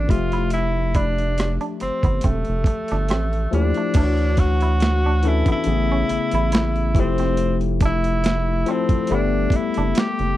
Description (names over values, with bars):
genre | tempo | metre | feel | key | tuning
R&B, neo-soul | 70 BPM | 4/4 | swing 55% on 16ths | unclear | A4 = 440 Hz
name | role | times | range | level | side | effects
clear tenor saxophone | melody | 0.0-10.4 s | A3 to G4 | -25 LUFS | right 1 dB | slapback echo
barky tine electric piano | accompaniment | 0.0-10.4 s | C#3 to E5 | -24 LUFS | left 8 dB | none
rubbery square bass | bass | 0.0-10.4 s | E1 to Eb2 | -21 LUFS | right 1 dB | none
clean electric guitar | second line | 0.1-9.9 s | A3 to E4 | -30 LUFS | right 4 dB | none
boom bap sampler-style drum kit | drums | 0.1-10.4 s | crash cymbal, hi-hat, kick drum, rim click, snare drum | -21 LUFS | right 1 dB | overdrive
room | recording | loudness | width
little or no reverb | dry, close 1970s-style studio recording | -18 LUFS | side -14 dB against mid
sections
0.0-4.0 A section; 4.0-10.4 B section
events
none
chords
0.1 Fmaj9; 4.0 Dmaj9; 5.7 Amaj9; 7.0 Fmaj9; 9.1 Gmaj9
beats
| 0.52 1.38 2.24 3.09 | 3.95 4.81 5.66 6.52 | 7.38 8.24 9.09 9.95